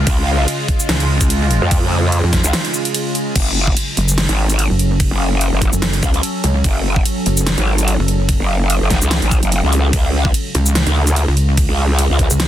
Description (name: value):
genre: heavy wobble dubstep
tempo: 146 BPM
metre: 4/4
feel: swing 55% on 16ths, half-time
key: F# harmonic minor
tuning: A4 = 440 Hz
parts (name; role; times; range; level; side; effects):
- evolving wavetable pad; sustained chords; 0.0-12.5 s; C#3 to A4; -23 LUFS; equal; phaser, built-in reverb, sidechain pumping
- pulsing pluck wobble bass; bass; 0.0-12.5 s; F#1 to E#2; -15 LUFS; equal; chorus, overdrive
- growl bass; bass; 0.1-12.3 s; F#1 to E#2; -15 LUFS; equal; distortion, chorus, overdrive
- dubstep drum kit; drums; 0.1-12.5 s; crash cymbal, hi-hat, ride cymbal, shaker, snare drum; -20 LUFS; right 1 dB; overdrive
- electronic kick drum; drums; 0.1-12.3 s; none; -17 LUFS; equal; overdrive
room: little or no reverb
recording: dense, heavily limited modern master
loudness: -13 LUFS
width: side -12 dB against mid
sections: 0.0-3.4 A section; 3.4-12.5 A section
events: drop 0.0-3.4, 3.4-12.5; break 2.5-3.4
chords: 0.0 C#; 3.4 F#m; 9.9 C#